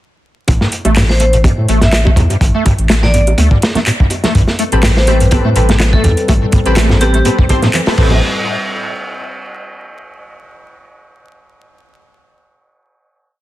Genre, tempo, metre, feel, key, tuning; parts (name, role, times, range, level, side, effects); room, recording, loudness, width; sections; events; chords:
breakbeat, breaks; 124 BPM; 4/4; swing 54% on 16ths; A minor; A4 = 440 Hz
overdriven acid bass; riff; 0.5-8.2 s; G2 to A3; -17 LUFS; equal; distortion, ensemble chorus, ping-pong delay
saturated sub bass; bass; 0.5-8.2 s; A1 to A2; -13 LUFS; equal; tube saturation
crunchy breakbeat drum kit; drums; 0.5-8.1 s; crash cymbal, hi-hat, kick drum, snare drum; -15 LUFS; equal
house drum kit; drums; 0.5-7.8 s; handclaps, hi-hat; -21 LUFS; equal; overdrive
bongos and congas; percussion; 0.5-8.2 s; -22 LUFS; right 3 dB
vibraphone with hard mallets; melody; 1.1-7.2 s; G4 to E5; -20 LUFS; left 1 dB; AM radio sound, ping-pong delay
dark analog pad; sustained chords; 4.4-8.2 s; G3 to C5; -22 LUFS; left 1 dB; chorus, sidechain pumping
orchestra-hit-like synth stab; stabs; 4.7-8.2 s; C4 to C5; -19 LUFS; left 1 dB; built-in reverb, ping-pong delay
little or no reverb; dense, heavily limited modern master, vinyl crackle; -9 LUFS; side -15 dB against mid
0.5-8.2 drop; 8.2-10.2 final hit
drop 0.5-8.2
0.5 Am9; 8.2 N.C.